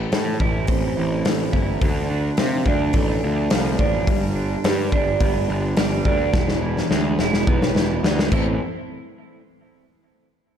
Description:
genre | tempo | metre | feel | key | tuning
quiet-loud alternative rock | 106 BPM | 4/4 | straight | A minor | A4 = 438 Hz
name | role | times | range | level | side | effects
twelve-string electric guitar | arpeggios | 0.0-8.6 s | G2 to E4 | -23 LUFS | right 4 dB | wide subtle chorus, analog delay
fuzz picked electric bass | bass | 0.0-8.6 s | E1 to C3 | -24 LUFS | equal | overdrive
big rock drum kit | drums | 0.1-8.4 s | crash cymbal, hi-hat, kick drum, snare drum | -22 LUFS | left 1 dB | none
room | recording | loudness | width
moderate lush hall reverb, RT60 1.8 s | big arena sound | -18 LUFS | side -8 dB against mid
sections
0.0-8.6 A section; 8.6-10.6 B section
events
drum fill 6.3-8.6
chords
0.0 Am; 1.8 Dm; 4.1 G; 6.3 E; 8.3 Am; 8.6 N.C.

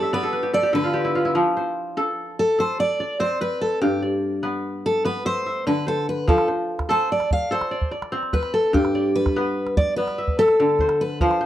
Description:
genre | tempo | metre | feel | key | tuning
west african traditional, West African string and xylophone music | 98 BPM (dotted quarters) | 12/8 | straight | unclear | A4 = 439 Hz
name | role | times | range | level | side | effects
picked steel-string acoustic guitar | melody | 0.0-11.4 s | G4 to F5 | -22 LUFS | equal | none
kora | arpeggios | 0.0-11.5 s | G2 to E5 | -23 LUFS | left 1 dB | none
calabash | percussion | 6.3-11.4 s | none | -23 LUFS | right 1 dB | none
room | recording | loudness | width
studio ambience | dry, close 1970s-style studio recording | -19 LUFS | side -12 dB against mid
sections
0.0-11.5 A section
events
kora fill 0.0-1.4; steel-string acoustic guitar solo 0.0-11.5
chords
0.0 G; 1.4 F; 3.8 G; 6.3 F; 8.7 G

